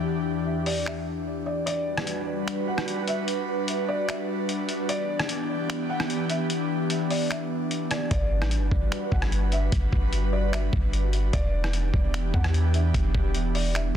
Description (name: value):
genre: hip hop, atmospheric cloud-rap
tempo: 149 BPM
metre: 4/4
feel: half-time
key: unclear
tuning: A4 = 439 Hz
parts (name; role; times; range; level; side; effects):
- felt-muted upright piano; melody; 0.0-14.0 s; D5 to F#5; -34 LUFS; equal; tape echo
- airy breathy pad; sustained chords; 0.0-14.0 s; E2 to B4; -28 LUFS; equal; chorus, sidechain pumping
- trip hop sampler-style drum kit; drums; 0.7-13.8 s; finger snaps, hi-hat, kick drum, rim click; -29 LUFS; equal; soft clipping on snare
- clean 808-style bass; bass; 8.1-14.0 s; E1 to E2; -24 LUFS; equal; none
room: digital ambience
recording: dense, heavily limited modern master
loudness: -24 LUFS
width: side -10 dB against mid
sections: 0.0-1.7 A section; 1.7-14.0 B section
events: filter sweep 0.0-1.7; kick muted 1.7-8.1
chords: 0.0 Em7; 1.7 Gmaj7; 4.9 Em7; 8.1 Gmaj7; 11.3 Em7